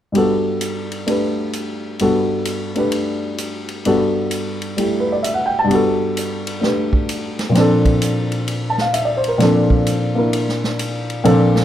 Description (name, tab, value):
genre	modal jazz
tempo	130 BPM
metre	4/4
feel	swing 65% on 8ths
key	G major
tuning	A4 = 442 Hz
part	warm baby grand piano	accompaniment	0.1-11.6 s	G2 to A5	-16 LUFS	equal	none
part	swinging big-band drum kit	drums	0.1-11.6 s	hi-hat, kick drum, ride cymbal, snare drum	-25 LUFS	right 1 dB	none
room	moderate club reverb, RT60 0.8 s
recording	none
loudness	-16 LUFS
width	side -11 dB against mid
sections	0.1-11.6 A section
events	none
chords	0.1 Gmaj9; 7.5 Bbmaj9